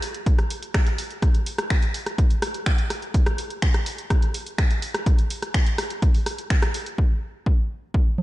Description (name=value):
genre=techno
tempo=125 BPM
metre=4/4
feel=straight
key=none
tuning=none
part: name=punchy analog drum machine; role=drums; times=0.0-8.2 s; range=congas, finger snaps, hi-hat, rim click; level=-28 LUFS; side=equal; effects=studio reverb
part: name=electronic kick drum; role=drums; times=0.3-8.0 s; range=none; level=-19 LUFS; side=equal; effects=studio reverb
room=light reverb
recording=nothing above 10.4 kHz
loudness=-20 LUFS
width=side -17 dB against mid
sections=0.0-7.0 A section; 7.0-8.2 B section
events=none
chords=none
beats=0.26 0.74 | 1.22 1.70 2.18 2.66 | 3.14 3.62 4.10 4.58 | 5.06 5.54 6.02 6.50 | 6.98 7.46 7.94